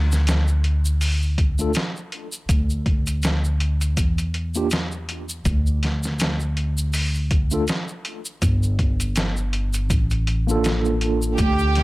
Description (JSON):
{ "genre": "trip hop", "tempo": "81 BPM", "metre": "4/4", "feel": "swing 57% on 16ths", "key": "unclear", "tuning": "A4 = 440 Hz", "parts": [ { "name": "upright bass", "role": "bass", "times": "0.0-11.8 s", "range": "G1 to E2", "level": "-21 LUFS", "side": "equal", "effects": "tube saturation" }, { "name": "trip hop sampler-style drum kit", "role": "drums", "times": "0.1-11.8 s", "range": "hi-hat, kick drum, snare drum", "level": "-24 LUFS", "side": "equal", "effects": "overdrive, small room ambience" }, { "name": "tube shaker", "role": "percussion", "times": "0.1-11.7 s", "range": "none", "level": "-33 LUFS", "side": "equal", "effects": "none" }, { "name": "mellow tine electric piano", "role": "accompaniment", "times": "1.6-11.4 s", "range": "A3 to A4", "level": "-25 LUFS", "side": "right 1 dB", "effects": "medium stereo tremolo, tape echo" }, { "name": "clear studio violin section", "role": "sustained chords", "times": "11.4-11.8 s", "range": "G4", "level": "-22 LUFS", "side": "right 4 dB", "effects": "none" } ], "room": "studio reverb", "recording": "none", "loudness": "-19 LUFS", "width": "side -19 dB against mid", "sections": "0.0-11.8 A section", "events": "none", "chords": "0.0 N.C.; 8.4 Gm9" }